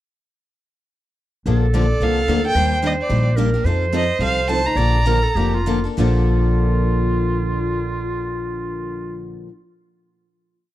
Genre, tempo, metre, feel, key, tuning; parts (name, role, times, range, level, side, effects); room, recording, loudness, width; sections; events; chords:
acoustic string swing (jazz manouche); 187-219 BPM; 4/4; swing 58% on 8ths; Bb major; A4 = 440 Hz
bright clarinet; second line; 1.5-9.3 s; F4 to D5; -24 LUFS; right 3 dB
picked steel-string acoustic guitar; accompaniment; 1.5-9.5 s; Bb2 to A4; -25 LUFS; left 7 dB
picked steel-string acoustic guitar; accompaniment; 1.5-9.5 s; Bb2 to A4; -28 LUFS; right 6 dB
upright bass; bass; 1.5-9.3 s; F1 to F2; -20 LUFS; equal
warm violin; melody; 1.7-5.7 s; D5 to Bb5; -22 LUFS; right 1 dB
studio reverb; dry, close 1970s-style studio recording; -17 LUFS; side -14 dB against mid
1.5-6.0 A section; 6.0-8.5 final chord
slowing down 3.7-6.0
1.5 Bbmaj7; 2.6 Ebmaj7; 3.7 F7; 4.8 Bbmaj7